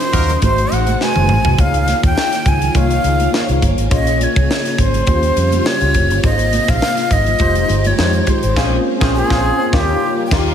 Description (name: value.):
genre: polished 1980s jazz-funk pop.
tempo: 103 BPM.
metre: 4/4.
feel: swing 54% on 16ths.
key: Ab major.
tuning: A4 = 441 Hz.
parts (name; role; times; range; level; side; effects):
breathy jazz flute; melody; 0.0-10.5 s; G4 to Ab5; -18 LUFS; equal; none.
tine electric piano; accompaniment; 0.0-10.5 s; Ab3 to Db5; -20 LUFS; left 1 dB; ensemble chorus.
string machine, violins; sustained chords; 0.0-10.5 s; C3 to Ab4; -24 LUFS; equal; ensemble chorus.
tight funk drum kit; drums; 0.0-10.5 s; crash cymbal, hi-hat, kick drum, snare drum, toms; -18 LUFS; equal; none.
warm horn section; second line; 0.1-0.3, 8.6-9.5 s; Ab3 to Bb4; -28 LUFS; right 1 dB; none.
vintage muted fingered electric bass; bass; 0.1-10.5 s; F1 to F2; -17 LUFS; equal; none.
congas; percussion; 0.1-8.4 s; none; -31 LUFS; right 5 dB; none.
room: moderate plate reverb, RT60 1.8 s, small room ambience.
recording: dreamy mix soaked in reverb.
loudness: -12 LUFS.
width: side -9 dB against mid.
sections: 0.0-10.5 A section.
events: band accent 0.0-1.6, 8.6-10.5; drum fill 1.0-1.6.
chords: 0.4 Ab7b9; 1.6 Db69; 3.9 Bbm7; 5.1 Eb13; 6.2 Ab69; 7.4 Fm9; 8.6 Bbm9; 9.7 Eb9.